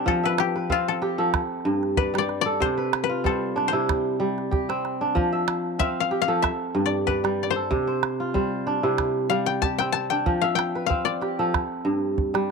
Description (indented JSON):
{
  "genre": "west african traditional, West African string and xylophone music",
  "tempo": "94 BPM",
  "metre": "4/4",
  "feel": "swing 54% on 16ths",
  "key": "C major",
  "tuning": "A4 = 440 Hz",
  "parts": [
    { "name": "koto", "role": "melody", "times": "0.0-12.5 s", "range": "F4 to A5", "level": "-26 LUFS", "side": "left 12 dB", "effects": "none" },
    { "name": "kora", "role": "arpeggios", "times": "0.0-12.5 s", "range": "G2 to F5", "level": "-24 LUFS", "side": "right 1 dB", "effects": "none" },
    { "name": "calabash", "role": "percussion", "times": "0.1-12.5 s", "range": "none", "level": "-27 LUFS", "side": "right 4 dB", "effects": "none" }
  ],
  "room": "light reverb, small room ambience",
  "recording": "1960s-style stereo",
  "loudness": "-22 LUFS",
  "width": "side -4 dB against mid",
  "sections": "0.0-12.5 A section",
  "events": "koto solo 0.0-12.5",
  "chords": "0.1 F; 1.3 G5; 2.6 C; 5.2 F; 6.4 G5; 7.7 C; 10.3 F; 11.5 Gsus2",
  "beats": "| 0.06 0.70 1.34 1.97 | 2.61 3.25 3.89 4.52 | 5.16 5.80 6.44 7.07 | 7.71 8.35 8.99 9.62 | 10.26 10.90 11.54 12.17"
}